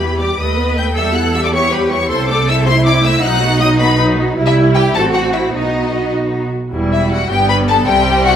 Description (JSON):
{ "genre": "quick classical-period movement for string orchestra", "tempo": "105 BPM (dotted quarters)", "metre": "6/8", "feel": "straight", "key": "unclear", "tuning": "A4 = 440 Hz", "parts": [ { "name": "rich studio violin section", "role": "melody", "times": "0.0-8.4 s", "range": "D#5 to G6", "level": "-17 LUFS", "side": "left 4 dB", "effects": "none" }, { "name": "clear chamber violin section", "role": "second line", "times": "0.0-8.4 s", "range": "D#4 to G5", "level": "-21 LUFS", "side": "left 2 dB", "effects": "none" }, { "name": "rich chamber viola section", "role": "accompaniment", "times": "0.0-8.4 s", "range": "F#3 to B4", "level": "-18 LUFS", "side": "equal", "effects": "none" }, { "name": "rich chamber double bass section", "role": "bass", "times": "0.0-8.4 s", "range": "E1 to E2", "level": "-18 LUFS", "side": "right 2 dB", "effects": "none" }, { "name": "rich studio cello section", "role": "bass", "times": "0.0-8.4 s", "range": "E2 to B4", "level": "-19 LUFS", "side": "right 1 dB", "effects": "none" } ], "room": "wet recital hall reverb, RT60 1.4 s", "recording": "none", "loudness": "-12 LUFS", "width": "side -9 dB against mid", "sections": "0.0-6.7 A section; 6.7-8.4 B section", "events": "none", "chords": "0.4 B7/D#; 1.0 Em; 2.1 Am/C; 3.2 B; 4.4 C; 5.0 F#dim/A; 5.5 B; 6.7 Em; 7.3 G", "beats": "0.39 | 0.96 1.53 | 2.10 2.66 | 3.23 3.80 | 4.37 4.95 | 5.54 6.14 | 6.73 7.31 | 7.88" }